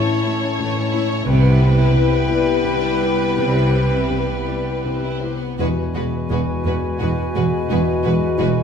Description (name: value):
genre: cinematic, emotional film score for orchestra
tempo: 84 BPM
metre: 3/4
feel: uneven beats, rubato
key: unclear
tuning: A4 = 440 Hz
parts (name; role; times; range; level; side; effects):
- warm symphonic violin section; melody; 0.0-8.5 s; B4 to C#5; -26 LUFS; left 4 dB; none
- mellow cor anglais; second line; 0.0-8.6 s; B4 to C#5; -30 LUFS; right 4 dB; none
- silver concert flute; second line; 0.0-8.6 s; G5 to A5; -31 LUFS; left 3 dB; none
- warm clarinet; second line; 0.0-8.6 s; E4 to F#4; -30 LUFS; left 1 dB; none
- warm symphonic violin section; second line; 0.0-8.5 s; G3 to F#4; -31 LUFS; left 1 dB; none
- felt-muted upright piano; accompaniment; 0.0-8.6 s; E1 to F#4; -24 LUFS; left 1 dB; none
- rich symphonic viola section; accompaniment; 0.0-8.5 s; G3 to A3; -30 LUFS; equal; none
- dark French horn section; sustained chords; 0.0-8.6 s; G#3 to F#4; -25 LUFS; left 5 dB; none
- concert harp; arpeggios; 0.0-8.6 s; A2 to B4; -28 LUFS; left 4 dB; none
- rich symphonic cello section; bass; 1.3-8.5 s; E2 to C3; -21 LUFS; right 1 dB; none
- warm symphonic double bass section; bass; 1.3-8.5 s; E1 to C2; -25 LUFS; right 3 dB; none
room: wet scoring stage reverb, RT60 1.5 s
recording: minimal, uncompressed stereo recording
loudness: -16 LUFS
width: side -7 dB against mid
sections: 0.0-8.6 A section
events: none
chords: 0.0 A; 1.3 Cmaj7; 5.6 Eadd9